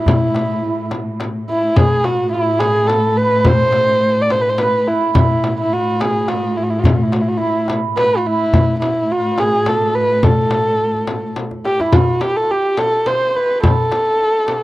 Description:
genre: Persian modal ensemble.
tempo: 106 BPM.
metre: 3/4.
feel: straight.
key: A avaz esfahan.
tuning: A4 = 440 Hz.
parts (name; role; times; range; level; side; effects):
dark kamancheh; melody; 0.0-14.6 s; E4 to D5; -16 LUFS; equal; none.
santur; second line; 0.0-14.6 s; E4 to C5; -25 LUFS; right 6 dB; none.
warm symphonic cello section; drone; 0.0-12.0 s; A2; -22 LUFS; equal; none.
frame drum; percussion; 0.1-14.6 s; none; -19 LUFS; left 2 dB; none.
tombak; percussion; 0.1-14.3 s; none; -19 LUFS; left 1 dB; none.
room: little or no reverb.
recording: dry, close 1970s-style studio recording.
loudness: -14 LUFS.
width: side -17 dB against mid.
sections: 0.0-11.9 A section; 11.9-14.6 B section.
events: drum fill 11.4-11.9.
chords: none.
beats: | 0.07 0.63 1.20 | 1.76 2.33 2.90 | 3.46 4.03 4.59 | 5.16 5.72 6.29 | 6.85 7.42 7.98 | 8.54 9.11 9.67 | 10.24 10.80 11.37 | 11.93 12.50 13.06 | 13.63 14.20.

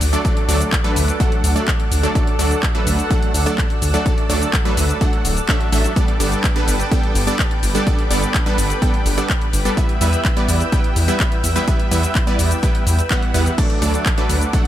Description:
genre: EDM, festival progressive house.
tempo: 126 BPM.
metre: 4/4.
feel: straight.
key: D major.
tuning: A4 = 440 Hz.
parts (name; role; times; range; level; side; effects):
lush unison pad; sustained chords; 0.0-14.7 s; A4 to E6; -27 LUFS; equal; chorus, sidechain pumping.
detuned saw bass; bass; 0.0-14.4 s; D1 to E2; -19 LUFS; equal; sidechain pumping.
house drum kit; drums; 0.0-14.6 s; crash cymbal, handclaps, hi-hat, shaker; -25 LUFS; left 1 dB; none.
downlifter; sound effects; 0.0-2.2 s; none; -40 LUFS; equal; none.
supersaw stab; riff; 0.1-14.7 s; F#3 to G5; -21 LUFS; right 1 dB; sidechain pumping, tape echo.
electronic kick drum; drums; 0.2-14.6 s; none; -19 LUFS; equal; none.
room: little or no reverb.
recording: none.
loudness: -15 LUFS.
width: side -12 dB against mid.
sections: 0.0-14.7 A section.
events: none.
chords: 0.0 D; 6.0 Gadd9; 9.8 Em; 13.6 D.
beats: | 0.25 0.72 1.20 1.68 | 2.15 2.63 3.10 3.58 | 4.06 4.53 5.01 5.49 | 5.96 6.44 6.92 7.39 | 7.87 8.34 8.82 9.30 | 9.77 10.25 10.72 11.20 | 11.68 12.15 12.63 13.11 | 13.58 14.06 14.53.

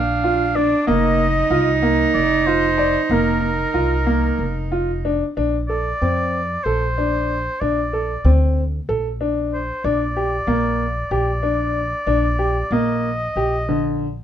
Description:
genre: contemporary instrumental, chamber music in an uneven meter.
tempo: 188 BPM (eighths).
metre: 7/8.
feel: straight.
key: Bb major.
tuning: A4 = 440 Hz.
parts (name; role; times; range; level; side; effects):
clear oboe; melody; 0.0-14.1 s; Bb4 to F5; -23 LUFS; equal; none.
warm cello; second line; 0.0-5.0 s; D4 to Eb4; -21 LUFS; right 5 dB; none.
upright bass; bass; 0.0-14.2 s; F1 to F2; -23 LUFS; equal; none.
clear baby grand piano; arpeggios; 0.2-14.0 s; D3 to D5; -21 LUFS; left 1 dB; none.
room: little or no reverb.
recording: close, detailed microphones.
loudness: -17 LUFS.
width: side -10 dB against mid.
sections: 0.0-5.4 A section; 5.4-14.2 B section.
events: none.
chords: 0.0 Bb; 0.9 F7sus4; 5.4 Bbmaj9; 9.8 Ebmaj7/Bb.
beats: 0.24 0.56 | 0.88 1.20 1.52 1.83 2.15 2.47 2.79 | 3.11 3.42 3.74 4.07 4.39 4.72 5.05 | 5.37 5.70 6.02 6.34 6.66 6.98 7.30 | 7.62 7.94 8.26 8.58 8.89 9.21 9.53 | 9.85 10.17 10.48 10.80 11.12 11.44 11.76 | 12.08 12.40 12.72 13.04 13.37 13.69 14.02.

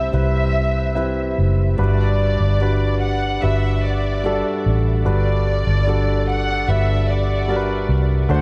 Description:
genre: pop.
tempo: 73 BPM.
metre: 4/4.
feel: straight.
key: G major.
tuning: A4 = 440 Hz.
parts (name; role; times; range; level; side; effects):
dark studio violin section; melody; 0.0-8.4 s; D5 to F#5; -27 LUFS; equal; tape echo.
warm concert grand piano; accompaniment; 0.0-8.4 s; G2 to C5; -25 LUFS; equal; none.
vintage muted fingered electric bass; bass; 0.0-8.4 s; F#1 to D2; -21 LUFS; equal; none.
room: moderate huge ambient reverb, RT60 7.7 s.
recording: dreamy mix soaked in reverb.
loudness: -19 LUFS.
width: mono.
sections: 0.0-8.4 A section.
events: none.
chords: 0.0 Cmaj7; 1.8 Gmaj7.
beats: 0.13 0.96 | 1.79 2.61 3.43 4.24 | 5.06 5.87 6.68 7.49 | 8.29.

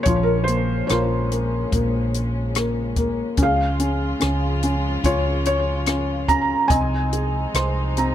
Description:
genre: acoustic folk-pop ballad.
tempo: 72 BPM.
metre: 4/4.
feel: straight.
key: Bb minor.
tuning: A4 = 440 Hz.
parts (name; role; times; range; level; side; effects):
felt-muted upright piano; melody; 0.0-8.1 s; F3 to Bb5; -21 LUFS; equal; slapback echo.
dark studio string section; sustained chords; 0.0-8.1 s; C3 to F4; -31 LUFS; left 2 dB; none.
hollow-body short-scale fingered electric bass; bass; 0.1-8.1 s; Bb1 to Db2; -24 LUFS; right 1 dB; none.
compact cocktail drum kit; drums; 0.1-8.1 s; hi-hat, kick drum, rim click; -24 LUFS; left 1 dB; none.
room: little or no reverb.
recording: close, detailed microphones.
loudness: -19 LUFS.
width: side -11 dB against mid.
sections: 0.0-8.1 A section.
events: felt piano fill 7.5-8.1.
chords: 0.0 Bbm; 3.4 Db; 6.7 Fm7/C.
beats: | 0.06 0.90 1.73 2.56 | 3.38 4.21 5.04 5.87 | 6.70 7.54.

